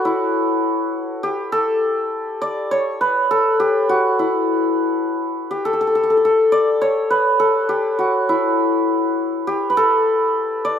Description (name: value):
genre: indian classical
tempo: 102 BPM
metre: 7/4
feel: straight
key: E raga bhimpalasi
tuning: A4 = 442 Hz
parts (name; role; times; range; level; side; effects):
- santur; solo; 0.0-10.8 s; E4 to D5; -16 LUFS; left 1 dB; none
room: moderate studio ambience, RT60 0.5 s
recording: band playing live in one room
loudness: -16 LUFS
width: side -8 dB against mid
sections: 0.0-10.8 A section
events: none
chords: none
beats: | 0.05 0.65 1.24 1.83 2.42 3.01 3.60 | 4.19 4.78 5.37 5.95 6.54 7.13 7.72 | 8.30 8.89 9.48 10.06 10.65